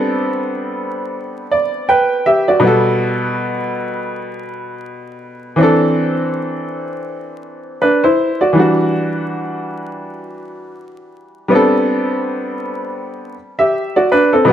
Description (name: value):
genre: hip hop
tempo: 81 BPM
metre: 4/4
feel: swing 59% on 16ths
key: unclear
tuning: A4 = 439 Hz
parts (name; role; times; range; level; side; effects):
- clear upright piano; solo; 0.0-14.5 s; B2 to G5; -14 LUFS; equal; none
room: light reverb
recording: vinyl crackle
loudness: -14 LUFS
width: side -10 dB against mid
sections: 0.0-14.5 A section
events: upright piano fill 1.2-2.6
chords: 0.0 Am11; 2.6 Gmaj9/B; 5.6 C69; 8.6 Em9; 11.5 Am11